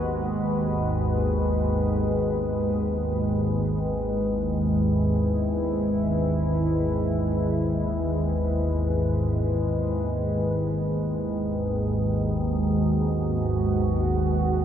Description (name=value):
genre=dark ambient drone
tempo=free time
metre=none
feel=none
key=G# minor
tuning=A4 = 440 Hz
part: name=deep dark ambient pad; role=sustained chords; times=0.0-14.6 s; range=G#3 to B4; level=-26 LUFS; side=equal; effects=chorus, built-in reverb
part: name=organ-like drone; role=drone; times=0.0-14.6 s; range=G#1 to D#2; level=-25 LUFS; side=equal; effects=ensemble chorus, built-in reverb
room=wet huge ambient reverb, RT60 8.0 s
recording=dreamy mix soaked in reverb, cassette tape, nothing above 10.9 kHz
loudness=-22 LUFS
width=side -9 dB against mid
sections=0.0-10.5 A section; 10.5-14.6 B section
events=none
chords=0.0 G#m7; 1.4 E; 10.5 G#m7